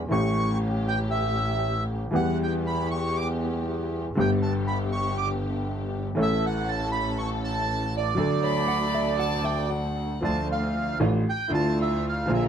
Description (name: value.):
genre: tango.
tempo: 118 BPM.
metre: 4/4.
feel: rubato.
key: D major.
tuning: A4 = 440 Hz.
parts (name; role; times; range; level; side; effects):
bandoneon; melody; 0.1-12.4 s; D5 to D6; -29 LUFS; right 4 dB; none.
bright concert grand piano; accompaniment; 0.1-12.5 s; G1 to A4; -27 LUFS; equal; none.
dark studio string section; stabs; 0.1-12.5 s; A3 to Bb4; -34 LUFS; left 3 dB; none.
bright double bass; bass; 0.1-12.5 s; G1 to E2; -30 LUFS; equal; none.
hollow-body jazz guitar; second line; 8.4-10.2 s; C#5 to F#5; -34 LUFS; left 5 dB; none.
warm violin; second line; 8.4-10.2 s; F#5 to B5; -32 LUFS; left 4 dB; none.
room: light reverb.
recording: close, detailed microphones.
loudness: -24 LUFS.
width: side -8 dB against mid.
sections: 0.0-10.2 A section; 10.2-12.5 B section.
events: none.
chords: 0.1 A7; 2.1 Em; 4.2 G; 6.2 A; 8.2 D; 10.2 Dmadd9.